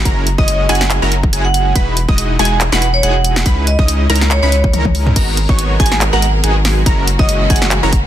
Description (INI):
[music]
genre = future bass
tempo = 141 BPM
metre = 4/4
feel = swing 55% on 16ths, half-time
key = G# minor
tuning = A4 = 440 Hz
[part]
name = wide unison pluck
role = arpeggios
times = 0.0-8.0 s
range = G#5 to D#6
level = -23 LUFS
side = right 1 dB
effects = sidechain pumping
[part]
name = supersaw stab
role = riff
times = 0.0-8.0 s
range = G#3 to D#5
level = -20 LUFS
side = equal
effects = sidechain pumping, ping-pong delay
[part]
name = saturated sub bass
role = bass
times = 0.0-8.1 s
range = E1 to C#2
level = -16 LUFS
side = equal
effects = tube saturation, sidechain pumping
[part]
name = big-room dance drum kit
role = drums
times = 0.1-8.0 s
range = crash cymbal, handclaps, hi-hat, snare drum, toms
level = -18 LUFS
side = equal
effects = none
[part]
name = electronic kick drum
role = drums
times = 0.1-8.0 s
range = none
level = -14 LUFS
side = equal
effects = none
[part]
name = vibraphone with hard mallets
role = melody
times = 0.4-7.6 s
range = C#5 to G#5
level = -20 LUFS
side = right 2 dB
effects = sidechain pumping, ping-pong delay
[part]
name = clear symphonic string section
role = sustained chords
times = 5.2-8.1 s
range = E3 to A#4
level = -24 LUFS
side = equal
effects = sidechain pumping
[sound]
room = little or no reverb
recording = dense, heavily limited modern master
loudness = -11 LUFS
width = side -11 dB against mid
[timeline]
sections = 0.0-5.2 A section; 5.2-8.1 A section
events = drop 0.0-5.2, 5.2-8.1; drum fill 4.7-5.2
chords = 0.1 F#9; 1.8 Emaj9; 3.5 C#m9; 5.2 G#m9; 6.9 F#9